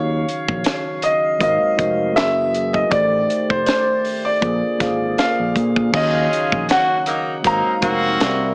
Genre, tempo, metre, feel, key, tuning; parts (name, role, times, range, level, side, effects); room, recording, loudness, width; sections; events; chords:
lush 1970s-style soul; 80 BPM; 4/4; swing 54% on 16ths; Eb dorian; A4 = 441 Hz
warm concert grand piano; melody; 0.0-8.5 s; C5 to Bb5; -22 LUFS; equal
mellow tine electric piano; accompaniment; 0.0-8.5 s; Eb3 to F5; -26 LUFS; equal
tonewheel organ; sustained chords; 0.0-8.5 s; C3 to F5; -33 LUFS; equal; slow rotary speaker
overdriven fingered electric bass; bass; 0.0-8.5 s; F1 to Bb2; -27 LUFS; equal
tight funk drum kit; drums; 0.3-8.4 s; crash cymbal, hi-hat, kick drum, snare drum; -25 LUFS; equal
vibraphone with soft mallets; texture; 2.9-7.2 s; A4 to F5; -34 LUFS; equal
warm horn section; stabs; 5.9-8.5 s; Gb3 to Ab4; -24 LUFS; equal
light reverb, small room reverb; small speaker sound; -18 LUFS; mono
0.0-5.9 A section; 5.9-8.5 A section
0.0 Ebm9; 1.4 Ab13; 2.2 Gb9; 2.9 F13 (rootless); 4.4 Bb7; 5.9 Ebm9; 7.5 Ab13